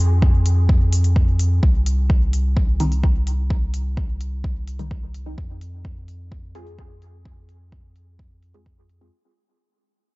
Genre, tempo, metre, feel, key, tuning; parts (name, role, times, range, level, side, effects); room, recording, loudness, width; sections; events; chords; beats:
dub techno; 128 BPM; 4/4; straight; A4 = 440 Hz
warm sub bass; bass; 0.0-9.1 s; C2 to F2; -20 LUFS; equal; sidechain pumping
electronic kick drum; drums; 0.2-8.8 s; -19 LUFS; equal; studio reverb
electronic hi-hat; drums; 0.5-9.0 s; -32 LUFS; left 2 dB; low-pass filter on hats, studio reverb
filtered dub chord stab; stabs; 2.8-9.1 s; Eb3 to Ab4; -31 LUFS; equal; phaser, sidechain pumping, dub echo
little or no reverb; nothing above 7.6 kHz; -17 LUFS; side -26 dB against mid
0.0-9.1 A section
fade-out 0.0-9.1; filter sweep on synth stab 0.0-9.1
0.0 N.C.; 1.6 Cm; 5.4 Fm
0.22 0.69 1.16 | 1.63 2.10 2.57 3.04 | 3.50 3.97 4.44 4.91 | 5.38 5.85 6.32 6.79 | 7.25 7.72 8.19 8.66